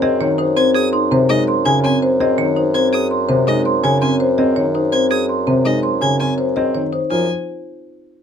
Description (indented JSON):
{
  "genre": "classical, minimalist pattern music",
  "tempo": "165 BPM",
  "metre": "6/4",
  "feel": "straight",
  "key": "unclear",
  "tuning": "A4 = 440 Hz",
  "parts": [
    { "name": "marimba with medium mallets", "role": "melody", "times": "0.0-7.3 s", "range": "C5 to C6", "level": "-19 LUFS", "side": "left 5 dB", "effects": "none" },
    { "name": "dark grand piano", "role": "accompaniment", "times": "0.0-7.3 s", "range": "C3 to Db4", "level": "-20 LUFS", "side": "right 2 dB", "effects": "none" },
    { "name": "marimba with medium mallets", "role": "arpeggios", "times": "0.0-7.3 s", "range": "C4 to Db5", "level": "-20 LUFS", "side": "right 1 dB", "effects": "none" },
    { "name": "mellow bassoon", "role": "bass", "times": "0.0-7.3 s", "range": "Gb2", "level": "-21 LUFS", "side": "right 1 dB", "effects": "none" },
    { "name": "rich violin", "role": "arpeggios", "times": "0.6-7.3 s", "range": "Eb5 to Ab6", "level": "-23 LUFS", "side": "left 2 dB", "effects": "none" }
  ],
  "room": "little or no reverb",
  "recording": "close, detailed microphones",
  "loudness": "-14 LUFS",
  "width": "side -8 dB against mid",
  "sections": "0.0-7.1 A section; 7.1-8.2 B section",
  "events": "none",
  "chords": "0.0 Dbsus2/Gb; 7.1 Gbsus2",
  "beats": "0.20 | 0.57 0.93 1.29 1.66 2.02 2.39 | 2.75 3.11 3.48 3.84 4.20 4.57 | 4.93 5.29 5.66 6.02 6.39 6.75 | 7.11"
}